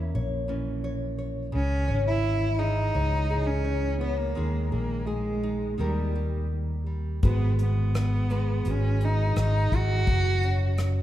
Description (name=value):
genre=acoustic folk-pop ballad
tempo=85 BPM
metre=4/4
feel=straight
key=G# minor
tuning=A4 = 440 Hz
part: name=nylon-string guitar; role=accompaniment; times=0.0-11.0 s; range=G#2 to C#5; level=-33 LUFS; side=equal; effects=none
part: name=fretless electric bass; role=bass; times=0.0-11.0 s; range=F#1 to E2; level=-26 LUFS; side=equal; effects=none
part: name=warm cello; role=melody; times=1.6-10.8 s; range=G3 to F#4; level=-30 LUFS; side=right 1 dB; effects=none
part: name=soft brush drum kit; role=drums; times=7.2-10.9 s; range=hi-hat, kick drum, rim click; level=-27 LUFS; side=left 1 dB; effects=none
room=moderate church reverb, RT60 2.5 s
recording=recorded in a church or concert hall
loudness=-24 LUFS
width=side -13 dB against mid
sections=0.0-7.2 A section; 7.2-11.0 B section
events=none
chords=0.0 A#dim; 1.5 C#m; 4.4 D#sus4; 5.8 D#; 7.2 G#m7; 10.1 F#5